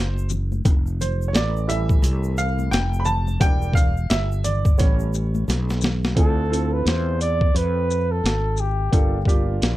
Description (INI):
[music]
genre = hip hop, jazz-hop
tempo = 87 BPM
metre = 4/4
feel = swing 60% on 16ths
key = D dorian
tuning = A4 = 440 Hz
[part]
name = warm upright piano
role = accompaniment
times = 0.0-9.8 s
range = E3 to B5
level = -27 LUFS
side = right 2 dB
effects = plate reverb
[part]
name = fretless electric bass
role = bass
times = 0.0-9.8 s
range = E1 to F2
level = -22 LUFS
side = equal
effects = analog chorus
[part]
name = egg shaker and congas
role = percussion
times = 0.2-6.2 s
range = none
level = -34 LUFS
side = left 6 dB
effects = none
[part]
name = boom bap sampler-style drum kit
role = drums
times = 0.3-9.8 s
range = hi-hat, kick drum, shaker, snare drum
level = -20 LUFS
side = equal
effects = none
[part]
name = breathy flugelhorn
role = melody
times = 6.2-9.3 s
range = G4 to D5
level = -25 LUFS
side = right 1 dB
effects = plate reverb
[sound]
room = little or no reverb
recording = dark, warm production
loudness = -18 LUFS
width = side -16 dB against mid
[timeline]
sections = 0.0-6.2 A section; 6.2-9.8 B section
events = upright piano solo 0.0-6.2; drum fill 5.5-6.2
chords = 0.0 N.C.; 0.7 Fmaj9; 3.4 Em7b5; 4.8 A7; 6.2 Dm9; 8.9 Gm9